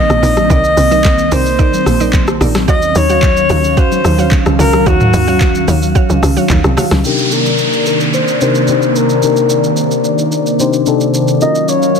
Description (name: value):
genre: amapiano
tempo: 110 BPM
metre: 4/4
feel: straight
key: unclear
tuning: A4 = 437 Hz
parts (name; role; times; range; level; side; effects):
- breathy alto saxophone; melody; 0.0-12.0 s; Gb4 to Eb5; -15 LUFS; left 2 dB; low-pass filter, tape echo
- airy breathy pad; sustained chords; 0.0-12.0 s; C3 to F5; -17 LUFS; right 2 dB; chorus, low-pass filter
- mallet-like synth pluck; stabs; 0.0-7.0 s; Db4 to F5; -21 LUFS; right 8 dB; chorus, tape echo
- tight log drum bass; bass; 0.1-7.0 s; Bb1 to Eb2; -15 LUFS; equal; none
- smooth R&B drum kit; drums; 0.1-12.0 s; handclaps, hi-hat, kick drum, rim click, shaker, snare drum, toms; -16 LUFS; equal; overdrive
- congas; percussion; 0.2-7.0 s; none; -21 LUFS; left 4 dB; none
- FM electric piano; accompaniment; 7.0-12.0 s; C3 to C5; -15 LUFS; left 7 dB; chorus, tremolo, low-pass filter
- downlifter; sound effects; 7.0-11.4 s; none; -20 LUFS; equal; none
room: digital ambience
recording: dense, heavily limited modern master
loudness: -9 LUFS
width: side -6 dB against mid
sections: 0.0-7.0 A section; 7.0-12.0 B section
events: drop 0.0-7.0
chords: 0.0 Cm9; 2.7 Ebm9; 7.0 Cm9; 11.4 Ebm9